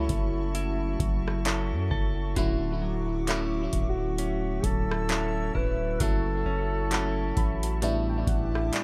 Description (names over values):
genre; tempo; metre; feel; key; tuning
contemporary R&B; 66 BPM; 4/4; swing 58% on 16ths; D major; A4 = 443 Hz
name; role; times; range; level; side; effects
dark duduk; melody; 0.0-7.8 s; E4 to B4; -36 LUFS; equal; analog delay
FM electric piano; accompaniment; 0.0-8.8 s; F#3 to B5; -35 LUFS; equal; chorus, phaser, analog delay
glassy FM pad; sustained chords; 0.0-8.8 s; F#4 to E6; -43 LUFS; equal; ensemble chorus, built-in reverb
direct-recorded clean electric guitar; arpeggios; 0.0-8.8 s; A2 to A4; -38 LUFS; equal; analog delay
long sustained 808-style bass; bass; 0.0-8.7 s; D1 to F#2; -33 LUFS; equal; none
booming analog drum machine; drums; 0.1-8.8 s; handclaps, hi-hat, kick drum, rim click; -31 LUFS; equal; none
room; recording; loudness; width
digital ambience; echo-heavy mix; -28 LUFS; mono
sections
0.0-8.8 A section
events
FM electric piano fill 6.9-8.8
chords
0.0 F#m7; 2.4 Dmaj9; 6.0 F#m7; 7.8 A7sus4